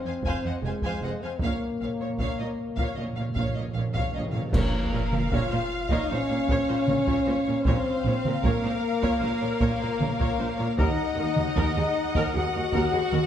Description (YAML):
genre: cinematic, epic orchestral film score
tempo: 77 BPM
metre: 4/4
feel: straight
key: Bb minor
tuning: A4 = 438 Hz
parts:
  - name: warm French horn section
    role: sustained chords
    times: 0.0-13.3 s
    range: Ab3 to Gb4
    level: -28 LUFS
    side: left 3 dB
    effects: none
  - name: rich studio cello section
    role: bass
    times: 0.0-13.2 s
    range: Eb2 to Bb2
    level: -32 LUFS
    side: right 3 dB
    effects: none
  - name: rich symphonic violin section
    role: melody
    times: 0.1-13.3 s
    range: Db5 to Ab5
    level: -37 LUFS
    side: left 4 dB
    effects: none
  - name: clear symphonic violin section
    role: second line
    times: 0.1-13.3 s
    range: Bb4 to Gb5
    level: -35 LUFS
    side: left 1 dB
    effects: none
  - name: rich symphonic viola section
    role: accompaniment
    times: 0.1-13.3 s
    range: Gb4 to F5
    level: -34 LUFS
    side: right 1 dB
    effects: none
  - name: clear symphonic double bass section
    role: bass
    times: 0.2-13.2 s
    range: F1 to Eb2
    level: -32 LUFS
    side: right 3 dB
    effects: none
  - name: taiko ensemble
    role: drums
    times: 0.2-13.3 s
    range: none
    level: -30 LUFS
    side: equal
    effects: none
  - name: cymbal swell, clash cymbals and concert bass drum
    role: percussion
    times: 1.4-6.1 s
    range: none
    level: -32 LUFS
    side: equal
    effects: none
  - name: timpani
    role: percussion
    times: 1.4-5.7 s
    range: Bb2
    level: -34 LUFS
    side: right 2 dB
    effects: none
room: moderate scoring stage reverb, RT60 1.6 s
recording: none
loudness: -24 LUFS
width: side -10 dB against mid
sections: 0.0-4.5 A section; 4.5-13.3 A section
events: timpani fill 1.4-4.5; band accent 4.5-5.3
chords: 0.0 Fm; 1.4 Bbm; 10.8 Ebm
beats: 0.62 | 1.40 2.19 2.97 3.75 | 4.53 5.31 6.09 6.88 | 7.66 8.44 9.22 10.00 | 10.78 11.56 12.34 13.12